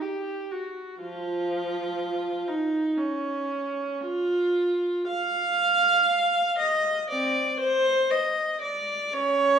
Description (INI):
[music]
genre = classical, baroque-style suite movement for unaccompanied viola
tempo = 59 BPM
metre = 4/4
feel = rubato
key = unclear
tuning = A4 = 442 Hz
[part]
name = warm viola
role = solo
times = 0.0-9.6 s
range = F3 to F5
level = -23 LUFS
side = right 1 dB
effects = none
[sound]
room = wet recital hall reverb, RT60 1.5 s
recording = heard from further back in the room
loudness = -23 LUFS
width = side -8 dB against mid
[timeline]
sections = 0.0-9.6 A section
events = none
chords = none